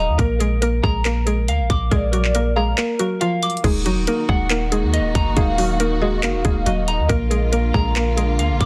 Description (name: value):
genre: hip hop, trap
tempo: 139 BPM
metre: 4/4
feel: half-time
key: Eb harmonic minor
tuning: A4 = 440 Hz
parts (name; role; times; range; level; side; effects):
- mallet-like synth pluck; melody; 0.0-8.7 s; F3 to Bb4; -26 LUFS; equal; chorus, low-pass filter, digital delay
- warm velvety synth lead; second line; 0.0-2.8, 5.4-7.1 s; D5 to F5; -29 LUFS; equal; chorus, digital delay
- semi-hollow electric guitar; accompaniment; 0.0-8.7 s; Eb4 to D6; -28 LUFS; equal; low-pass filter
- clean 808-style bass; bass; 0.0-8.7 s; Eb1 to Eb2; -23 LUFS; equal; none
- trap drum kit; drums; 0.2-8.7 s; crash cymbal, handclaps, hi-hat, kick drum; -25 LUFS; equal; vintage 12-bit sampler grit
- dark symphonic string section; sustained chords; 3.6-8.7 s; D3 to Gb4; -30 LUFS; equal; none
room: digital ambience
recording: dense, heavily limited modern master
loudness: -19 LUFS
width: mono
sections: 0.0-3.6 A section; 3.6-8.7 B section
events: break 2.8-3.6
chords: 0.2 Bb; 3.6 Ebm; 7.1 Bb